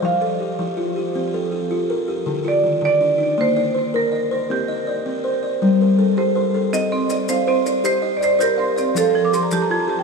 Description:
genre	southern african traditional, mbira-style interlocking cycle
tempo	108 BPM (dotted quarters)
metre	12/8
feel	straight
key	C dorian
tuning	A4 = 440 Hz
part	marimba with medium hard mallets	melody	0.0-10.0 s	G4 to F5	-21 LUFS	right 4 dB	tape echo
part	buzzing kalimba	arpeggios	0.0-10.0 s	D3 to F5	-20 LUFS	left 2 dB	none
part	maracas	percussion	6.7-9.7 s	none	-34 LUFS	left 6 dB	none
part	marimba with hard mallets	arpeggios	6.9-10.0 s	F3 to D6	-23 LUFS	right 4 dB	none
room	wet huge ambient reverb, RT60 5.5 s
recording	dreamy mix soaked in reverb, studio ambience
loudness	-17 LUFS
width	side -4 dB against mid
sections	0.0-6.7 A section; 6.7-10.0 A section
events	marimba fill 9.1-10.0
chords	0.0 F; 2.3 Dm; 3.4 Bb; 4.5 Cm; 5.6 Gm; 6.7 Cm; 9.0 F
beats	| 0.04 0.60 1.16 1.71 | 2.27 2.83 3.39 3.94 | 4.50 5.06 5.62 6.18 | 6.73 7.29 7.85 8.41 | 8.96 9.52

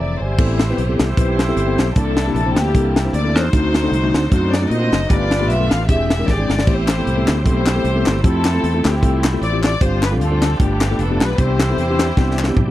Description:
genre	uptempo gospel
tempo	153 BPM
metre	4/4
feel	swing 55% on 8ths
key	C major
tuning	A4 = 440 Hz
part	warm studio string section	melody	0.0-12.7 s	Bb3 to F5	-22 LUFS	left 1 dB	none
part	mellow tine electric piano	accompaniment	0.0-12.7 s	G2 to Bb5	-22 LUFS	left 2 dB	medium stereo tremolo
part	bright tonewheel organ	sustained chords	0.0-12.7 s	D3 to G#5	-30 LUFS	right 5 dB	slow rotary speaker, chorus vibrato
part	fingered electric bass	bass	0.0-12.7 s	E1 to Bb2	-20 LUFS	equal	none
part	tight funk drum kit	drums	0.4-12.7 s	crash cymbal, hi-hat, kick drum, snare drum, toms	-18 LUFS	equal	none
part	group handclap	percussion	6.9-12.5 s	none	-28 LUFS	left 4 dB	none
room	little or no reverb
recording	dry, close 1970s-style studio recording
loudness	-14 LUFS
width	side -14 dB against mid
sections	0.4-12.7 A section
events	tine electric piano fill 0.0-0.4; tonewheel organ fill 0.0-0.4; drum fill 6.3-6.7, 12.2-12.7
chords	0.4 Am9; 2.0 C13; 3.5 D7b9; 5.1 G9; 5.9 E7alt; 6.7 Am9; 8.2 Fmaj9; 9.8 G7sus4; 10.6 G9; 11.4 Cmaj9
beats	0.00 | 0.39 0.78 1.18 1.57 | 1.96 2.35 2.75 3.14 | 3.53 3.92 4.32 4.71 | 5.10 5.50 5.89 6.28 | 6.67 7.07 7.46 7.85 | 8.24 8.64 9.03 9.42 | 9.82 10.21 10.60 10.99 | 11.39 11.78 12.17 12.56

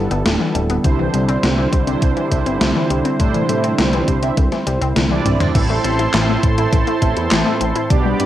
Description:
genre	synthwave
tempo	102 BPM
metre	4/4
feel	straight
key	unclear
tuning	A4 = 440 Hz
part	warm analog pad	sustained chords	0.0-8.3 s	D3 to D6	-22 LUFS	equal	chorus, sidechain pumping, cassette tape
part	analog pluck	arpeggios	0.0-8.3 s	D3 to E4	-23 LUFS	left 7 dB	chorus, cassette tape, tape echo
part	fat analog bass	bass	0.0-8.3 s	D1 to A2	-20 LUFS	equal	none
part	gated 80s digital drum machine	drums	0.1-8.3 s	crash cymbal, handclaps, hi-hat, snare drum, toms	-20 LUFS	equal	gated reverb, gated reverb snare, overdrive, cassette tape
part	mellow synth brass	stabs	0.8-8.3 s	A2 to E5	-22 LUFS	right 7 dB	chorus, cassette tape, tape echo
part	electronic kick drum	drums	0.8-8.0 s	none	-17 LUFS	equal	overdrive, cassette tape
room	light reverb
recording	home recording on cassette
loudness	-14 LUFS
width	side -12 dB against mid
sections	0.0-5.5 A section; 5.5-8.3 B section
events	drum fill 5.1-5.5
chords	0.0 G6; 0.8 Cadd9; 5.5 Am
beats	0.26 | 0.84 1.43 2.02 2.61 | 3.20 3.79 4.37 4.96 | 5.55 6.14 6.73 7.32 | 7.90

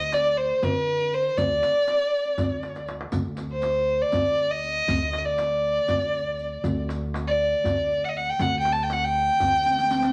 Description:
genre	Turkish makam ensemble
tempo	239 BPM (eighths)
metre	7/8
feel	straight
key	D makam hicaz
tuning	A4 = 440 Hz
part	dark violin	melody	0.0-10.1 s	B4-43c to A5	-25 LUFS	equal	none
part	upright bass	bass	0.0-10.1 s	D2 to D3	-34 LUFS	equal	none
part	darbuka	percussion	0.1-10.0 s	none	-36 LUFS	equal	none
part	riq	percussion	0.1-10.1 s	none	-35 LUFS	equal	none
room	wet studio reverb, RT60 0.9 s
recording	none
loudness	-24 LUFS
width	mono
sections	0.0-3.1 A section; 3.1-10.1 B section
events	drum fill 2.6-3.1, 9.7-10.1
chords	none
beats	0.12 0.37 0.62 0.88 1.13 | 1.38 1.63 1.88 2.13 2.38 2.63 2.88 | 3.13 3.38 3.63 3.88 4.14 4.39 4.64 | 4.89 5.14 5.39 5.64 5.89 6.14 6.39 | 6.65 6.90 7.15 7.40 7.65 7.90 8.15 | 8.40 8.65 8.91 9.16 9.41 9.66 9.91

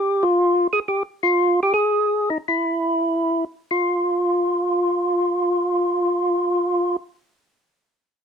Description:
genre	jazz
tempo	90-127 BPM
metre	4/4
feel	swing 67% on 8ths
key	F minor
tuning	A4 = 444 Hz
part	percussive tonewheel organ	solo	0.0-7.0 s	Eb4 to Ab4	-18 LUFS	equal	slow rotary speaker, overdrive
room	light reverb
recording	close, detailed microphones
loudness	-18 LUFS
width	side -7 dB against mid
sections	0.0-3.7 A section; 3.7-8.2 B section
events	slowing down 0.0-3.7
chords	none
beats	0.38 0.87 | 1.37 1.90 2.46 3.05 | 3.69 4.36 5.02 5.69 | 6.36

